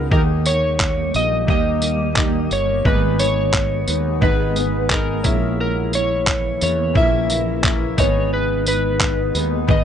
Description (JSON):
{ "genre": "acoustic pop", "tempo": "88 BPM", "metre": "4/4", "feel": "swing 60% on 16ths", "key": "G# harmonic minor", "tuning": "A4 = 440 Hz", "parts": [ { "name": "electric slide guitar", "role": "melody", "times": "0.0-9.8 s", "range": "A#4 to E5", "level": "-22 LUFS", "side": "equal", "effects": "none" }, { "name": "bright upright piano", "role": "accompaniment", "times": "0.0-9.8 s", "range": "A#3 to E5", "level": "-30 LUFS", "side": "left 4 dB", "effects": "none" }, { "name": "fingerpicked steel-string acoustic guitar", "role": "accompaniment", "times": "0.0-9.8 s", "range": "G#2 to B4", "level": "-24 LUFS", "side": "equal", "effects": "double-tracked left and right" }, { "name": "granular cloud pad", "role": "sustained chords", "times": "0.0-9.8 s", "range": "C#3 to G#4", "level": "-27 LUFS", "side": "equal", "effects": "built-in reverb" }, { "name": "mellow fretless electric bass", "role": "bass", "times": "0.0-9.8 s", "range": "G1 to E2", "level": "-23 LUFS", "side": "equal", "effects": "lush chorus" }, { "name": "dusty soul sampler-style drum kit", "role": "drums", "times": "0.1-9.8 s", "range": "handclaps, kick drum, tambourine", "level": "-20 LUFS", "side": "equal", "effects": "none" } ], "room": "light reverb", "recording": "nothing above 10.5 kHz", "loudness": "-16 LUFS", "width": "side -8 dB against mid", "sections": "0.0-9.8 A section", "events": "none", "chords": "0.1 D#; 2.9 G#m; 5.2 A#dim; 8.0 G#m", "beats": "| 0.11 0.80 1.48 2.17 | 2.85 3.54 4.22 4.91 | 5.59 6.27 6.96 7.64 | 8.32 9.00 9.68" }